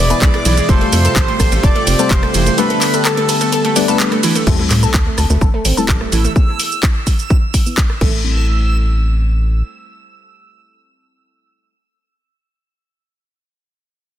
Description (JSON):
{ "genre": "progressive house", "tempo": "127 BPM", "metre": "4/4", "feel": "straight", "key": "A minor", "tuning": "A4 = 440 Hz", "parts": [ { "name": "expressive synth lead", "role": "melody", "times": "0.0-3.8 s", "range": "A4 to D5", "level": "-20 LUFS", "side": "right 1 dB", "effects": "lush chorus, dub echo" }, { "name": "soft supersaw", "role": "second line", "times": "0.0-3.7 s", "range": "A5 to D6", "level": "-25 LUFS", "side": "right 2 dB", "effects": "sidechain pumping, dub echo" }, { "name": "warm analog pad", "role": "sustained chords", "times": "0.0-4.5 s", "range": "B2 to G#4", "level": "-22 LUFS", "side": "right 1 dB", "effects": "chorus, sidechain pumping" }, { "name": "analog pluck", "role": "arpeggios", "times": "0.0-8.5 s", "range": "E3 to A4", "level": "-21 LUFS", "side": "right 1 dB", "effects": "chorus, sidechain pumping, dub echo" }, { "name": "tight sequencer bass", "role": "bass", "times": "0.0-9.6 s", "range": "E1 to A2", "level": "-15 LUFS", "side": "equal", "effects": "sidechain pumping" }, { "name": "deep mellow chord stab", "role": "stabs", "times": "0.1-11.7 s", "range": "G3 to D5", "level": "-20 LUFS", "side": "left 5 dB", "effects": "chorus, cassette tape, sidechain pumping, dub echo" }, { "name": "house drum kit", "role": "drums", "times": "0.1-8.1 s", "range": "crash cymbal, handclaps, hi-hat, ride cymbal, rim click, shaker", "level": "-19 LUFS", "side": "right 1 dB", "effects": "sidechain pumping on hats, sidechain pumping on perc, soft clipping on snare, sidechain pumping on cymbals" }, { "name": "electronic kick drum", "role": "drums", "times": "0.2-8.1 s", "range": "none", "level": "-14 LUFS", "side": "equal", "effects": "none" }, { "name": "sub drop", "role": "sound effects", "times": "4.5-6.4 s", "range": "none", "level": "-24 LUFS", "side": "equal", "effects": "none" }, { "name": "backwards swelling texture", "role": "texture", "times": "5.8-8.3 s", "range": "E6", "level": "-27 LUFS", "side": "right 6 dB", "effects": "built-in reverb, sidechain pumping" } ], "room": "light reverb, digital ambience", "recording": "dense, heavily limited modern master", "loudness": "-12 LUFS", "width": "side -11 dB against mid", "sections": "0.0-4.5 A section; 4.5-8.2 B section; 8.2-12.0 C section", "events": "drop 0.0-4.5; impact 4.5-6.4; filter sweep on synth stab 4.5-8.2", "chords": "0.0 E; 0.7 Fadd9; 2.6 Gadd9; 4.5 Am7; 6.4 E; 8.0 Am7" }